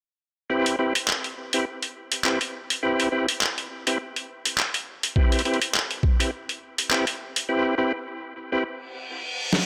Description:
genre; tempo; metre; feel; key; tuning
glitch hop; 103 BPM; 4/4; swing 56% on 16ths; unclear; A4 = 440 Hz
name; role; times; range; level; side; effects
percussive tonewheel organ; stabs; 0.5-8.6 s; C4 to B4; -29 LUFS; equal; overdrive, fast rotary speaker, sidechain pumping, low-pass filter, tape echo
boom bap sampler-style drum kit; drums; 0.7-9.7 s; handclaps, hi-hat, snare drum; -26 LUFS; equal; none
electronic kick drum; drums; 5.2-6.2 s; none; -22 LUFS; equal; none
reverse cymbal; sound effects; 8.9-9.7 s; none; -31 LUFS; equal; none
room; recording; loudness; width
moderate lush hall reverb, RT60 2.0 s; dry, gritty hardware recording; -25 LUFS; mono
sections
0.5-9.7 A section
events
reverse cymbal 8.9-9.7; drum fill 9.4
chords
0.5 Cmaj7

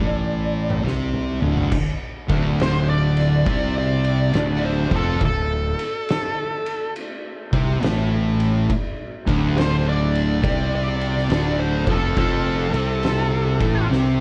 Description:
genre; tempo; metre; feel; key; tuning
stoner and doom metal; 69 BPM; 4/4; swing 66% on 8ths; D minor; A4 = 441 Hz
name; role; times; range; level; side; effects
fuzz lead guitar; melody; 0.0-13.9 s; A4 to D5; -28 LUFS; equal; wah, distortion, tape echo
thick fuzz guitar; riff; 0.0-14.2 s; D2 to C4; -28 LUFS; equal; distortion
thick fuzz guitar; riff; 0.0-14.2 s; D2 to C4; -27 LUFS; equal; distortion
fuzz fingered electric bass; bass; 0.0-14.2 s; D1 to C2; -27 LUFS; equal; overdrive
oversized low-tuned drum kit; drums; 0.7-14.2 s; crash cymbal, kick drum, ride cymbal, snare drum, toms; -28 LUFS; equal; none
sludgy distorted guitar; riff; 2.3-14.2 s; D2 to C4; -31 LUFS; equal; overdrive
room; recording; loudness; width
moderate small room reverb, RT60 0.6 s; cassette tape; -21 LUFS; mono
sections
0.0-1.7 A section; 1.7-14.2 B section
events
drum fill 0.8-1.7, 13.9-14.2; lead electric guitar solo 1.7-14.2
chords
0.0 D5; 1.7 Dm

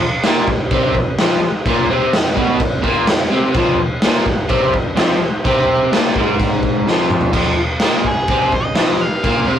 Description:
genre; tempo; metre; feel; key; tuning
garage rock duo or trio; 126 BPM; 4/4; straight; unclear; A4 = 440 Hz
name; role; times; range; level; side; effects
crunchy overdriven guitar; riff; 0.0-9.6 s; F2 to C4; -16 LUFS; equal; none
raw garage drum kit; drums; 0.2-9.4 s; crash cymbal, kick drum, snare drum, toms; -16 LUFS; equal; none
octave-fuzz lead guitar; melody; 7.8-9.6 s; Ab4 to F5; -20 LUFS; equal; distortion
room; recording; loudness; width
light reverb; rough rehearsal-room recording, warm saturation; -13 LUFS; side -9 dB against mid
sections
0.0-7.4 A section; 7.4-9.6 B section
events
drum fill 6.9-7.4; lead electric guitar solo 7.4-9.6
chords
0.0 F5

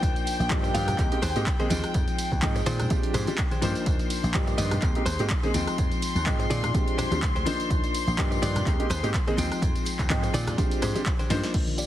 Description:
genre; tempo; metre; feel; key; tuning
filtered disco house; 125 BPM; 4/4; swing 55% on 16ths; Bb mixolydian; A4 = 440 Hz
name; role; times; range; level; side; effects
warm grand piano; accompaniment; 0.0-11.8 s; F3 to G5; -30 LUFS; equal; phaser, sidechain pumping, low-pass filter
dark chamber string section; sustained chords; 0.0-11.6 s; G5 to C6; -34 LUFS; left 4 dB; sidechain pumping, low-pass filter
vintage slap bass; bass; 0.0-11.6 s; Bb1 to Bb2; -29 LUFS; equal; sidechain pumping, low-pass filter
electronic kick drum; drums; 0.0-11.6 s; none; -27 LUFS; equal; none
punchy analog drum machine; drums; 0.0-11.9 s; crash cymbal, handclaps, hi-hat, ride cymbal, rim click, snare drum, tambourine; -33 LUFS; right 1 dB; sidechain pumping on hats, sidechain pumping on perc, sidechain pumping on cymbals
maracas and congas; percussion; 0.0-11.9 s; none; -36 LUFS; left 1 dB; sidechain pumping on perc, low-pass filter on perc
direct-recorded clean electric guitar; riff; 0.2-11.9 s; D4 to F5; -34 LUFS; equal; sidechain pumping, low-pass filter
room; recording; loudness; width
light reverb; heavily compressed radio sound, multiband compression; -23 LUFS; side -12 dB against mid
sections
0.0-11.5 A section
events
drop 0.0-11.5; drum fill 11.3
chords
0.0 Ebmaj9; 1.0 Abmaj7/Eb; 2.9 Bb13; 3.9 Ebmaj9; 4.8 Abmaj7/Eb; 5.8 Fm7; 6.7 Bb13; 7.7 Ebmaj9; 8.7 Abmaj7/Eb; 9.6 Fm7; 10.6 Bb13

